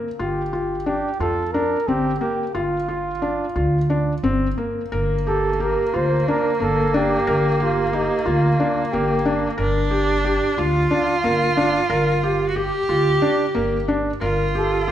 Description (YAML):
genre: contemporary instrumental, chamber music in an uneven meter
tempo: 180 BPM (eighths)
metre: 7/8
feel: straight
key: G minor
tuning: A4 = 439 Hz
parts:
  - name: felt-muted upright piano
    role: arpeggios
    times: 0.0-14.9 s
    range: Bb3 to Bb4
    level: -22 LUFS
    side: left 2 dB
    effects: none
  - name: mellow flugelhorn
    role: melody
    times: 0.2-9.4, 14.6-14.9 s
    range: Eb4 to C5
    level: -24 LUFS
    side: right 1 dB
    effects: none
  - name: upright bass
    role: bass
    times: 0.2-14.9 s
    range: G1 to F2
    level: -24 LUFS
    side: right 1 dB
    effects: none
  - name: clear viola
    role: second line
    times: 4.9-14.9 s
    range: Bb3 to G4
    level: -23 LUFS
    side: right 2 dB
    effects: none
room: moderate concert hall reverb, RT60 1.9 s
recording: recorded in a church or concert hall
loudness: -18 LUFS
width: side -11 dB against mid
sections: 0.0-4.9 A section; 4.9-14.9 B section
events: none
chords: 0.0 G7(no3); 4.9 Gm7